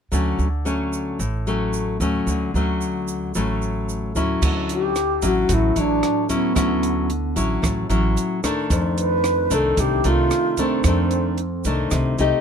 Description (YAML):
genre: bossa nova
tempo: 112 BPM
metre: 4/4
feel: straight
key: D major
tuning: A4 = 439 Hz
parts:
  - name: nylon-string guitar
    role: accompaniment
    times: 0.1-12.4 s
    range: F2 to G4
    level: -23 LUFS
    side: left 3 dB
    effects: none
  - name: upright bass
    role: bass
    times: 0.1-12.3 s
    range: A1 to F2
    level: -24 LUFS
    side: right 1 dB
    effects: none
  - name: tube shaker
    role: percussion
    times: 0.1-12.4 s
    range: none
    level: -35 LUFS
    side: right 9 dB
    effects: none
  - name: compact cocktail drum kit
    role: drums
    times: 4.4-12.3 s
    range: crash cymbal, hi-hat, kick drum, rim click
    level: -26 LUFS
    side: right 1 dB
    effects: none
  - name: wooden-headed alto flute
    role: melody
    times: 4.7-11.7 s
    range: B3 to B4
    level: -21 LUFS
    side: right 1 dB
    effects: none
room: little or no reverb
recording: none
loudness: -19 LUFS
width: side -7 dB against mid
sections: 0.1-4.4 A section; 4.4-12.4 B section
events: none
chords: 0.1 Dmaj7; 4.4 Dmaj9; 8.7 F13